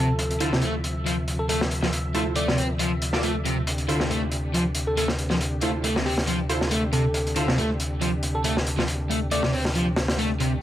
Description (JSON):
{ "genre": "breakbeat, breaks", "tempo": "138 BPM", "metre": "4/4", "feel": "swing 54% on 16ths", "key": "D minor", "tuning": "A4 = 440 Hz", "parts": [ { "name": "bell-like FM electric piano", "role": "melody", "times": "0.0-9.7 s", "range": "G4 to D5", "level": "-31 LUFS", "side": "equal", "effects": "chorus, phaser, telephone sound, low-pass filter, dub echo" }, { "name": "tonewheel organ", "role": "sustained chords", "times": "0.0-10.6 s", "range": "D2 to E5", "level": "-27 LUFS", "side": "equal", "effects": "chorus vibrato, slow rotary speaker, sidechain pumping, low-pass filter" }, { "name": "crunchy overdriven guitar", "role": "riff", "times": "0.0-10.5 s", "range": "C3 to C4", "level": "-26 LUFS", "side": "equal", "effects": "low-pass filter" }, { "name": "crunchy breakbeat drum kit", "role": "drums", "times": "0.2-10.5 s", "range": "hi-hat, snare drum", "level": "-28 LUFS", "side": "equal", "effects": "high-pass filter on kick, high-pass filter on hats, high-pass filter on snare, high-pass filter on room" }, { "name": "orchestra-hit-like synth stab", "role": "stabs", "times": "0.4-9.1 s", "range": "E4 to D5", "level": "-30 LUFS", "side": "right 2 dB", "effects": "built-in reverb, dub echo" } ], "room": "moderate studio reverb, RT60 0.6 s", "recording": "vinyl crackle", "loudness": "-22 LUFS", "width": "side -12 dB against mid", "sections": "0.0-10.6 A section", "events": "filter sweep on tonewheel organ 0.0-10.6", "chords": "0.0 Dm9", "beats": "| 0.19 0.62 1.06 1.49 | 1.93 2.36 2.80 3.23 | 3.67 4.10 4.54 4.97 | 5.41 5.84 6.28 6.71 | 7.15 7.58 8.02 8.45 | 8.88 9.32 9.75 10.19" }